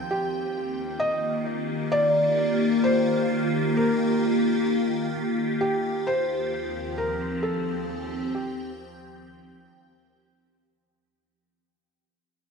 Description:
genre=ambient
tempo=65 BPM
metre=3/4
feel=straight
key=unclear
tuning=A4 = 438 Hz
part: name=evolving wavetable pad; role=sustained chords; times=0.0-11.2 s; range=Eb2 to G5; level=-25 LUFS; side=left 1 dB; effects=ensemble chorus, built-in reverb, phaser
part: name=felt-muted upright piano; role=melody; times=0.1-9.3 s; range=G4 to Eb5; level=-26 LUFS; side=equal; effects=ping-pong delay
room=wet plate reverb, RT60 2.7 s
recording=dreamy mix soaked in reverb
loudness=-23 LUFS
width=side -5 dB against mid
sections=0.0-11.2 A section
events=fade-out 3.8-11.2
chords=0.0 Fsus2/Eb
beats=| 0.10 1.02 1.94 | 2.87 3.79 4.71 | 5.63 6.56 7.48 | 8.40 9.33 10.25

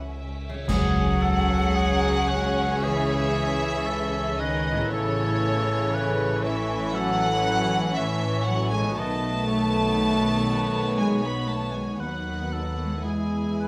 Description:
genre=cinematic, emotional film score for orchestra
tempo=58 BPM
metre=4/4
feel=uneven beats, rubato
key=C# minor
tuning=A4 = 439 Hz
part: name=warm studio violin section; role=melody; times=0.0-13.7 s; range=C#5 to B5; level=-34 LUFS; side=equal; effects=none
part: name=dark studio violin section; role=second line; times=0.0-13.7 s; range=E4 to E5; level=-37 LUFS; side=equal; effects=none
part: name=mellow hollow small flute group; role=second line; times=0.0-13.7 s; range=C#5 to B5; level=-36 LUFS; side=equal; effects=none
part: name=warm cor anglais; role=second line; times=0.0-13.7 s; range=F#4 to D#5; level=-34 LUFS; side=equal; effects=none
part: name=dark studio viola section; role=accompaniment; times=0.0-13.7 s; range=C#3 to E4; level=-34 LUFS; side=equal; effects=none
part: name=mellow French horn section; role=sustained chords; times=0.0-13.7 s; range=C#3 to B3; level=-35 LUFS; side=equal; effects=none
part: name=concert harp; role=arpeggios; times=0.0-13.7 s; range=A2 to G#5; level=-38 LUFS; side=equal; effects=none
part: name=warm studio cello section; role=bass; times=0.0-13.7 s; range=C#3 to B3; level=-32 LUFS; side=equal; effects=none
part: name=warm studio double bass section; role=bass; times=0.0-13.7 s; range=A1 to E2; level=-32 LUFS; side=equal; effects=none
part: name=clash cymbals and concert bass drum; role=percussion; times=0.7-2.8 s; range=none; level=-35 LUFS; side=equal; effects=none
part: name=timpani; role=percussion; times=0.7-2.3 s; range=C#3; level=-34 LUFS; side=equal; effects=none
room=moderate stone room reverb, RT60 0.9 s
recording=none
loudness=-24 LUFS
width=mono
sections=0.7-13.7 A section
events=band accent 0.7-1.8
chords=0.0 C#m; 4.9 Aadd9; 8.9 B7; 13.0 E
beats=| 0.67 1.76 2.82 3.85 | 4.89 5.92 6.92 7.93 | 8.95 9.96 10.98 11.99 | 13.03

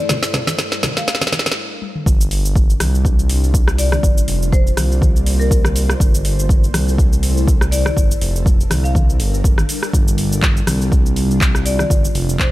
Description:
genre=afro house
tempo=122 BPM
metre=4/4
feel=swing 55% on 16ths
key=unclear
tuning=A4 = 439 Hz
part: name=marimba with medium mallets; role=melody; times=0.0-12.5 s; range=Bb4 to F5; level=-26 LUFS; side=left 3 dB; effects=dub echo
part: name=ethereal airy pad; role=sustained chords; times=0.0-12.5 s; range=C3 to D5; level=-27 LUFS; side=equal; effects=ensemble chorus, built-in reverb, sidechain pumping
part: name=afro-pop drum kit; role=drums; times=0.1-12.5 s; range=cabasa, handclaps, hi-hat, rim click, snare drum, toms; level=-21 LUFS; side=equal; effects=none
part: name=congas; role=percussion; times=0.1-1.6 s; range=none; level=-25 LUFS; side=right 1 dB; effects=none
part: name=smooth gliding synth bass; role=bass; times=2.1-12.5 s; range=F1 to C2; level=-18 LUFS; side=equal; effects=sidechain pumping
part: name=electronic kick drum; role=drums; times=2.1-12.5 s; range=none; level=-15 LUFS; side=equal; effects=none
room=little or no reverb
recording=none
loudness=-13 LUFS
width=side -17 dB against mid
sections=0.0-2.1 A section; 2.1-12.5 B section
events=build-up 0.0-2.1; drum fill 0.0-1.6, 1.8; filter sweep on ambient pad 0.0-2.1; stop 1.6-2.1; drop 2.1-12.5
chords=0.1 Gm; 2.1 Csus4/G; 4.0 Bbadd9; 6.0 Am7/G; 8.0 Gm; 9.9 Csus4/G; 11.9 Bbadd9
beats=| 0.10 0.59 1.08 1.57 | 2.06 2.56 3.05 3.54 | 4.03 4.52 5.02 5.51 | 6.00 6.49 6.98 7.47 | 7.97 8.46 8.95 9.44 | 9.93 10.43 10.92 11.41 | 11.90 12.39

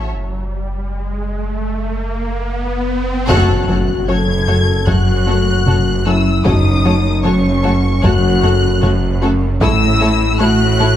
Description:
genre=cinematic, hybrid orchestral and electronic film score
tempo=76 BPM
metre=4/4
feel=straight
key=F# dorian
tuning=A4 = 438 Hz
part: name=rich symphonic violin section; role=melody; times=0.0-11.0 s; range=E5 to G#6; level=-21 LUFS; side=left 2 dB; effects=none
part: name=clear symphonic violin section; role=second line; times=0.0-10.9 s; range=A4 to C#5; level=-25 LUFS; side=left 4 dB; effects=none
part: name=warm symphonic viola section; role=accompaniment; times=0.0-10.9 s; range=A3 to F#4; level=-26 LUFS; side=right 2 dB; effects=none
part: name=warm sub bass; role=bass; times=0.0-11.0 s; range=F#1 to A1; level=-22 LUFS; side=equal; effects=none
part: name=riser and impact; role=sound effects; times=0.0-6.5 s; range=none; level=-23 LUFS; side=equal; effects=none
part: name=warm French horn section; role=sustained chords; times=3.3-11.0 s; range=C#4 to A4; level=-20 LUFS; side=left 6 dB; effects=none
part: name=tight sequenced synth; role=arpeggios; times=3.3-11.0 s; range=F#3 to A4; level=-25 LUFS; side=equal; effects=chorus, phaser, digital delay
part: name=plucky analog bass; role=riff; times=3.3-11.0 s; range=F#2 to A3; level=-19 LUFS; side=left 1 dB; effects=none
part: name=rich symphonic cello section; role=bass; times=3.3-11.0 s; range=F#2 to A2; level=-20 LUFS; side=right 2 dB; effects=none
part: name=warm studio double bass section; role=bass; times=3.3-11.0 s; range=F#1 to A1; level=-19 LUFS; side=right 3 dB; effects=none
part: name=taiko ensemble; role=drums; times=3.3-10.4 s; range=none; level=-20 LUFS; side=equal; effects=none
room=moderate concert hall reverb, RT60 1.9 s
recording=none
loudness=-13 LUFS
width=side -11 dB against mid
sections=0.0-3.3 A section; 3.3-11.0 B section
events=riser 0.0-3.3; drum fill 2.1-3.3; band accent 3.3-4.1; impact 3.3-6.5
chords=0.1 N.C.; 3.3 F#m; 9.6 A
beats=| 0.14 0.93 1.72 2.51 | 3.30 4.09 4.88 5.67 | 6.46 7.25 8.04 8.82 | 9.61 10.40

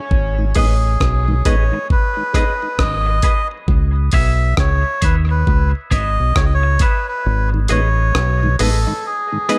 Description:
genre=dub reggae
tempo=67 BPM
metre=4/4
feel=swing 62% on 16ths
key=G# phrygian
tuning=A4 = 440 Hz
part: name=deep dub fingered electric bass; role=bass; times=0.1-8.8 s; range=G#1 to D#2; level=-19 LUFS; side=equal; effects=none
part: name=dusty soul sampler-style drum kit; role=drums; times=0.1-9.6 s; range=hi-hat, kick drum, rim click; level=-20 LUFS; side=equal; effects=none
part: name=mellow tonewheel organ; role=accompaniment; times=0.4-9.6 s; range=G#2 to E4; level=-28 LUFS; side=equal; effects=slow rotary speaker, high-pass filter
part: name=melodica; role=melody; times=0.6-9.6 s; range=G#4 to E5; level=-23 LUFS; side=equal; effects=dub echo
part: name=semi-hollow electric guitar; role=accompaniment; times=0.6-9.6 s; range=G#4 to E5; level=-30 LUFS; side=equal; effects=high-pass filter, dub echo
room=light reverb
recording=none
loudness=-17 LUFS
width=mono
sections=0.0-9.6 A section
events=filter sweep 0.1-7.3; kick muted 7.3-9.6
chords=0.1 G#m; 3.7 C#m; 7.3 G#m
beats=| 0.11 1.00 1.90 2.79 | 3.68 4.57 5.47 6.36 | 7.25 8.14 9.04

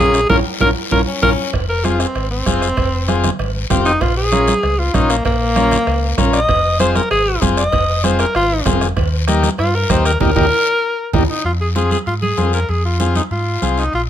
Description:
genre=latin, cumbia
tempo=194 BPM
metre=4/4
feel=straight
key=F minor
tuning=A4 = 440 Hz
part: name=clear alto saxophone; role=melody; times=0.0-14.0 s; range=Bb3 to Eb5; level=-17 LUFS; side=left 1 dB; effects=plate reverb
part: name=overdriven combo organ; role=accompaniment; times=0.0-13.8 s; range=Bb3 to Bb4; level=-19 LUFS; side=left 4 dB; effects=none
part: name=fingered electric bass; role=bass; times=0.0-14.1 s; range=F1 to Ab2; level=-19 LUFS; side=equal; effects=none
part: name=bombo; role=percussion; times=0.1-11.2 s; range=none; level=-22 LUFS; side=right 2 dB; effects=none
part: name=guiro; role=percussion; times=0.1-14.1 s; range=none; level=-28 LUFS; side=left 7 dB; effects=none
part: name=congas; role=percussion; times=0.3-14.1 s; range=none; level=-24 LUFS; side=right 4 dB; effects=none
part: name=timbales and cowbell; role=percussion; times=0.3-14.1 s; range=none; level=-27 LUFS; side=right 5 dB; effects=none
part: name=clear tenor saxophone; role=second line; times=1.1-1.5 s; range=Db4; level=-23 LUFS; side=left 6 dB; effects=none
room=light reverb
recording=close, detailed microphones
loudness=-13 LUFS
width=side -10 dB against mid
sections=0.0-1.5 A section; 1.5-11.4 B section; 11.4-14.1 C section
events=band accent 0.3-1.5, 10.2-11.4; drum fill 0.6-1.5, 10.8-11.4; alto saxophone solo 1.5-11.4; transistor combo organ fill 11.0-11.4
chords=0.0 Bbm; 1.5 Fm; 4.0 Bbm; 6.5 Fm; 9.0 Eb; 11.4 Fm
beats=| 0.30 0.61 0.92 1.23 | 1.54 1.85 2.16 2.47 | 2.78 3.09 3.40 3.71 | 4.02 4.33 4.64 4.95 | 5.25 5.57 5.88 6.18 | 6.49 6.80 7.11 7.42 | 7.73 8.04 8.35 8.66 | 8.97 9.28 9.59 9.90 | 10.21 10.52 10.83 11.14 | 11.45 11.76 12.07 12.38 | 12.69 13.00 13.31 13.62 | 13.94

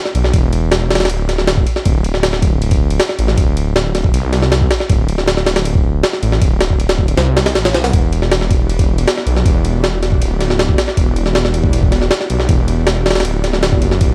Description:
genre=drum and bass, jungle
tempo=158 BPM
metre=4/4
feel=straight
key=E minor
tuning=A4 = 436 Hz
part: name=detuned saw bass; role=bass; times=0.1-14.1 s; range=D1 to C2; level=-18 LUFS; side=equal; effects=none
part: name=jungle sampler-style drum kit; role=drums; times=0.1-14.1 s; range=kick drum, ride cymbal, snare drum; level=-17 LUFS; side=equal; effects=none
part: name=ethereal airy pad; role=sustained chords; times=8.5-14.1 s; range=B3 to D5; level=-26 LUFS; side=equal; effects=ensemble chorus, built-in reverb
room=little or no reverb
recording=dry, gritty hardware recording, vinyl crackle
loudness=-15 LUFS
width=mono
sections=0.0-14.1 A section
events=none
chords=0.0 E5; 1.9 D5; 7.9 Em9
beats=| 0.34 0.72 1.10 1.48 | 1.86 2.24 2.62 3.00 | 3.38 3.76 4.14 4.52 | 4.89 5.28 5.66 6.04 | 6.41 6.79 7.17 7.55 | 7.93 8.31 8.69 9.07 | 9.45 9.83 10.21 10.59 | 10.97 11.35 11.73 12.11 | 12.49 12.87 13.25 13.63 | 14.01

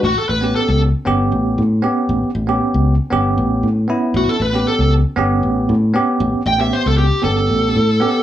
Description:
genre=straight-eighth soul blues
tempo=116 BPM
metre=4/4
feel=swing 53% on 16ths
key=A mixolydian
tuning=A4 = 439 Hz
part: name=smooth overdriven lead guitar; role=melody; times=0.0-0.8, 4.2-8.2 s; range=F#4 to G5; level=-18 LUFS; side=equal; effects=none
part: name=bell-like tine electric piano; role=accompaniment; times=0.0-8.2 s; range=B3 to G4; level=-18 LUFS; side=right 2 dB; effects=fast stereo tremolo
part: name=fingered electric bass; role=bass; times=0.0-8.0 s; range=G1 to A2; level=-17 LUFS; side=left 1 dB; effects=none
room=light reverb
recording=small room ambience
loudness=-14 LUFS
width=side -12 dB against mid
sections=0.0-8.2 A section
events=lead electric guitar solo 0.0-8.2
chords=0.0 A9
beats=| 0.03 0.54 1.06 1.57 | 2.09 2.60 3.12 3.63 | 4.15 4.66 5.18 5.69 | 6.21 6.72 7.24 7.75

